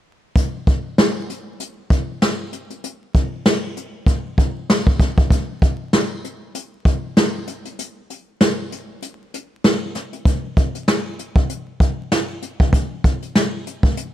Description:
hip hop; 97 BPM; 4/4; swing 58% on 16ths
jazz brush drum kit; drums; 0.4-14.1 s; hi-hat, kick drum, snare drum; -16 LUFS; equal
little or no reverb; vinyl crackle; -17 LUFS; side -12 dB against mid
0.4-10.3 A section; 10.3-14.1 B section
break 7.8-10.3

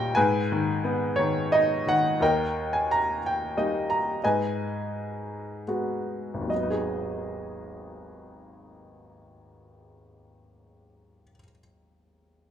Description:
classical, lyrical solo piano; 66-92 BPM; 3/4; rubato; G# minor; A4 = 440 Hz
clear baby grand piano; solo; 0.0-12.5 s; G#1 to A#5; -24 LUFS; equal
moderate recital hall reverb, RT60 1.6 s; minimal, uncompressed stereo recording; -24 LUFS; side -9 dB against mid
0.0-2.2 A section; 2.2-6.5 B section; 6.5-11.7 C section
slowing down 2.2-6.5
0.2 G#m; 2.2 D#; 4.2 G#m7

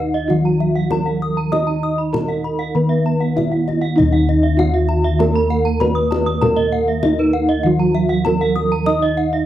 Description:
Balinese gamelan; 98 BPM; 4/4; straight; Eb pelog; A4 = 441 Hz
gamelan-type bronze metallophone; melody; 0.0-9.5 s; Eb4 to Eb5; -19 LUFS; right 1 dB
gamelan-type bronze metallophone; accompaniment; 0.0-9.5 s; Eb3 to Eb4; -24 LUFS; right 6 dB
gamelan-type bronze metallophone; arpeggios; 0.0-9.3 s; Eb5 to Eb6; -26 LUFS; left 6 dB
gamelan-type bossed gongs; bass; 0.0-9.5 s; Eb2 to Eb5; -19 LUFS; left 1 dB
gamelan-type bronze metallophone; arpeggios; 0.1-9.5 s; Cb5-40c to Eb6; -27 LUFS; right 7 dB
kendang; percussion; 0.1-9.4 s; -26 LUFS; left 2 dB
little or no reverb; dry, close 1970s-style studio recording; -15 LUFS; side -12 dB against mid
0.0-9.5 A section

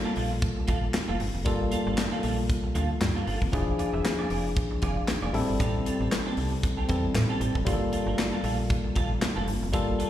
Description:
early-eighties boogie funk; 116 BPM; 4/4; swing 56% on 16ths; G dorian; A4 = 439 Hz
barky tine electric piano; accompaniment; 0.0-10.1 s; F3 to A4; -30 LUFS; left 2 dB; overdrive, slapback echo
clean electric guitar; riff; 0.0-10.1 s; Bb3 to E5; -34 LUFS; right 4 dB; ensemble chorus, slapback echo
slap-like FM bass; bass; 0.2-9.9 s; E1 to A2; -29 LUFS; equal
modern studio drum kit; drums; 0.2-10.1 s; handclaps, hi-hat, kick drum, snare drum; -29 LUFS; equal
light reverb; live gig heard through the venue's PA, recital hall reverb; -25 LUFS; side -12 dB against mid
0.0-10.1 A section
0.0 Gm9; 3.5 E7b9; 5.3 Am7; 7.7 Gm9

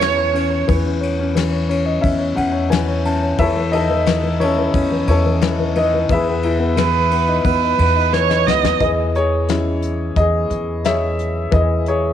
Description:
acoustic folk-pop ballad; 89 BPM; 4/4; straight; E major; A4 = 441 Hz
warm grand piano; melody; 0.0-12.1 s; E3 to A5; -18 LUFS; left 2 dB
rich viola; second line; 0.0-0.7, 6.8-8.8 s; B4 to D#5; -18 LUFS; right 11 dB
upright bass; bass; 0.0-12.1 s; C#2 to E2; -20 LUFS; equal
soft brush drum kit; drums; 0.0-12.0 s; hi-hat, kick drum, ride cymbal, snare drum; -24 LUFS; left 4 dB
light reverb, small room ambience; 1960s-style stereo; -15 LUFS; side -10 dB against mid
0.0-8.8 A section; 8.8-12.1 A section
grand piano fill 1.4-3.4; drum fill 8.1-8.8
0.0 Emaj13; 6.1 Emaj7; 8.8 C#madd9/E

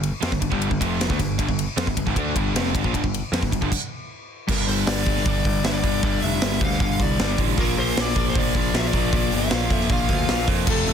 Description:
hard rock; 155 BPM; 4/4; straight; G minor; A4 = 443 Hz
distorted electric guitar; riff; 0.0-10.9 s; F2 to D4; -27 LUFS; right 15 dB; overdrive
overdriven semi-hollow guitar; riff; 0.0-10.9 s; F2 to D4; -27 LUFS; left 14 dB
modern bright picked electric bass; bass; 0.0-10.9 s; F1 to F2; -27 LUFS; equal
big rock drum kit; drums; 0.0-10.9 s; crash cymbal, hi-hat, kick drum, ride cymbal, snare drum; -24 LUFS; right 1 dB
smooth overdriven lead guitar; melody; 4.5-10.9 s; A4 to F5; -28 LUFS; left 4 dB; plate reverb
octave-fuzz lead guitar; second line; 9.9-10.9 s; A3 to F4; -31 LUFS; right 3 dB; distortion, plate reverb
light reverb; dense, heavily limited modern master; -20 LUFS; side -8 dB against mid
0.0-4.5 A section; 4.5-10.9 B section
stop 3.7-4.5
0.0 G5; 7.6 Bb

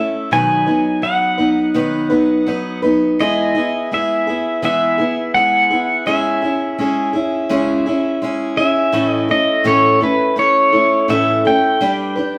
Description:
rock; 84 BPM; 4/4; straight; A4 = 439 Hz
pedal steel guitar; melody; 0.0-12.4 s; B4 to G#5; -19 LUFS; equal
picked steel-string acoustic guitar; accompaniment; 0.0-12.4 s; A2 to B4; -19 LUFS; equal
wet large studio reverb, RT60 0.9 s; band playing live in one room; -16 LUFS; mono
0.0-8.9 A section; 8.9-12.4 B section
0.3 B; 3.2 E; 6.1 C#m; 8.9 A; 11.8 G

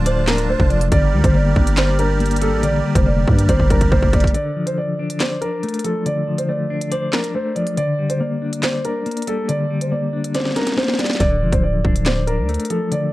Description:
hip hop, drill; 140 BPM; 4/4; half-time; D minor; A4 = 441 Hz
dark grand piano; melody; 0.0-13.1 s; A4 to D5; -23 LUFS; right 1 dB; low-pass filter, tape echo
clean electric guitar; accompaniment; 0.0-13.1 s; D3 to D5; -22 LUFS; left 3 dB; tremolo, low-pass filter
musette accordion; sustained chords; 0.0-4.3 s; D3 to A5; -27 LUFS; right 4 dB
growling 808-style bass; bass; 0.0-4.3, 11.2-12.6 s; D1 to G2; -18 LUFS; equal
drill drum kit; drums; 0.1-13.0 s; handclaps, hi-hat, kick drum, snare drum; -19 LUFS; equal
little or no reverb; dark, warm production; -16 LUFS; side -17 dB against mid
0.0-4.3 A section; 4.3-13.1 B section
drum fill 3.5-4.3, 10.3-11.2; break 4.3-11.2
0.0 Dm; 0.9 Gm; 4.3 Dm; 7.8 Gm; 11.2 Dm

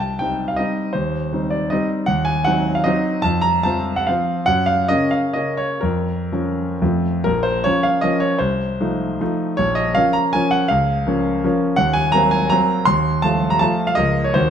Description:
classical, romantic triple-time dance for piano with dotted rhythms; 119-180 BPM; 3/4; rubato; Bb minor; A4 = 440 Hz
warm grand piano; solo; 0.0-14.5 s; Bb1 to C6; -16 LUFS; equal
wet large studio reverb, RT60 1.4 s; dark, warm production; -16 LUFS; side -8 dB against mid
0.0-7.3 A section; 7.3-14.5 B section
0.0 Cm; 0.9 Cm/Eb; 2.1 Cdim/Eb; 3.2 F5; 4.5 Gb; 5.8 Bbm/F; 6.8 F; 7.3 Bbm; 8.4 F7/C; 9.6 Bbm; 10.7 Bbm/Db; 11.8 Cm7b5/Eb; 12.9 F7/Eb; 14.0 Bbm/Db

